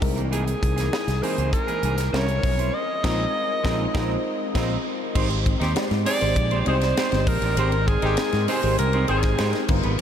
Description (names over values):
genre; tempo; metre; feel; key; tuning
polished 1980s jazz-funk pop; 99 BPM; 4/4; straight; unclear; A4 = 440 Hz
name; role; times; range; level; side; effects
FM electric piano; accompaniment; 0.0-10.0 s; G3 to G5; -28 LUFS; left 2 dB; analog chorus
clean electric guitar; riff; 0.0-10.0 s; E3 to D5; -30 LUFS; right 4 dB; analog chorus
fingered electric bass; bass; 0.0-10.0 s; G1 to Ab2; -24 LUFS; equal; none
tight funk drum kit; drums; 0.0-10.0 s; crash cymbal, hi-hat, kick drum, ride cymbal, snare drum; -27 LUFS; equal; none
bright alto saxophone; melody; 0.3-9.7 s; G#4 to Eb5; -27 LUFS; equal; none
warm horn section; second line; 5.6-9.2 s; C4 to C5; -32 LUFS; left 3 dB; none
room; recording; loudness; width
moderate huge ambient reverb, RT60 8.1 s; dreamy mix soaked in reverb; -20 LUFS; side -9 dB against mid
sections
0.0-5.2 A section; 5.2-10.0 B section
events
band accent 2.7-5.2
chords
0.0 C7alt; 2.1 C7b9; 2.7 Bb9sus4; 5.2 Abmaj7